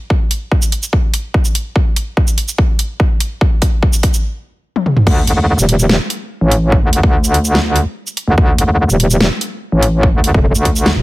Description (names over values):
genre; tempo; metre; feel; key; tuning
heavy wobble dubstep; 145 BPM; 4/4; half-time; D phrygian; A4 = 440 Hz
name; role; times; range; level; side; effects
electronic kick drum; drums; 0.1-10.7 s; none; -13 LUFS; equal; overdrive, studio reverb
dubstep drum kit; drums; 0.3-10.9 s; crash cymbal, hi-hat, shaker, snare drum, toms; -17 LUFS; equal; studio reverb
metallic wobble bass; bass; 5.1-11.0 s; Eb1 to D2; -12 LUFS; equal; chorus, overdrive
room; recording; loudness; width
digital ambience; none; -12 LUFS; side -18 dB against mid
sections
0.0-5.1 A section; 5.1-11.0 B section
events
build-up 0.0-5.1; drum fill 1.8-4.2, 4.8-5.1; stop 4.2-5.1; drop 5.1-11.0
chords
none